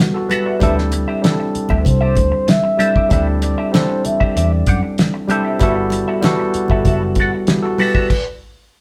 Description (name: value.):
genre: lush 1970s-style soul.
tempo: 96 BPM.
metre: 4/4.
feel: straight.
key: G major.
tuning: A4 = 440 Hz.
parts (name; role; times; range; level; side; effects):
barky tine electric piano; accompaniment; 0.0-8.2 s; G3 to D5; -22 LUFS; equal; overdrive.
clean electric guitar; riff; 0.0-8.1 s; B3 to F#5; -25 LUFS; equal; wah.
cloth-damped thuddy drum kit; drums; 0.0-8.2 s; crash cymbal, hi-hat, kick drum, snare drum; -20 LUFS; equal; none.
congas; percussion; 0.3-7.9 s; none; -26 LUFS; equal; none.
vintage muted fingered electric bass; bass; 0.6-7.3 s; F#1 to F#2; -21 LUFS; equal; none.
breathy flugelhorn; melody; 1.3-5.3 s; A4 to E5; -23 LUFS; equal; none.
room: moderate studio reverb, RT60 0.7 s.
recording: band playing live in one room.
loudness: -16 LUFS.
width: mono.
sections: 0.0-8.8 A section.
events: stop 8.1-8.8.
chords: 0.0 Gmaj13; 0.6 D9sus4; 5.6 Gmaj13.